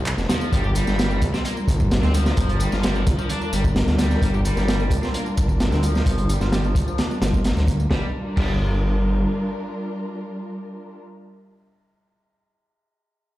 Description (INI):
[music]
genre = breakbeat, breaks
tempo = 130 BPM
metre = 4/4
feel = straight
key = G minor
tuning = A4 = 440 Hz
[part]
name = dark studio string section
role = sustained chords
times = 0.0-11.0 s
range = F3 to Bb4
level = -28 LUFS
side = equal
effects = sidechain pumping
[part]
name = detuned saw bass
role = bass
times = 0.0-9.3 s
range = F1 to D2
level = -22 LUFS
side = equal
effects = tube saturation
[part]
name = crunchy breakbeat drum kit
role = drums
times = 0.1-8.5 s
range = crash cymbal, hi-hat, kick drum, snare drum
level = -23 LUFS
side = equal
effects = none
[part]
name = electronic handclaps and tambourine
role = drums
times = 0.1-7.9 s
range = none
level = -36 LUFS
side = equal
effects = none
[part]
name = cranked stack guitar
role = riff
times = 0.3-8.5 s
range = F3 to G4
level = -29 LUFS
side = equal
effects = overdrive, low-pass filter, dub echo
[part]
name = congas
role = percussion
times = 0.3-7.8 s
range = none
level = -32 LUFS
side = right 2 dB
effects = none
[sound]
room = light reverb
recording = played on a big sound system in a bare room, stone room reverb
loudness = -19 LUFS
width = side -16 dB against mid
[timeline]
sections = 0.5-7.9 A section; 7.9-11.6 B section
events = filter sweep on detuned saw bass 0.5-7.9; filter sweep on overdriven electric guitar 0.5-7.9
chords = 0.0 F7; 0.5 Gm7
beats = 0.07 | 0.53 0.99 1.45 1.91 | 2.37 2.83 3.30 3.76 | 4.22 4.68 5.14 5.60 | 6.07 6.53 6.99 7.45 | 7.91 8.37 8.84 9.30 | 9.76 10.22 10.68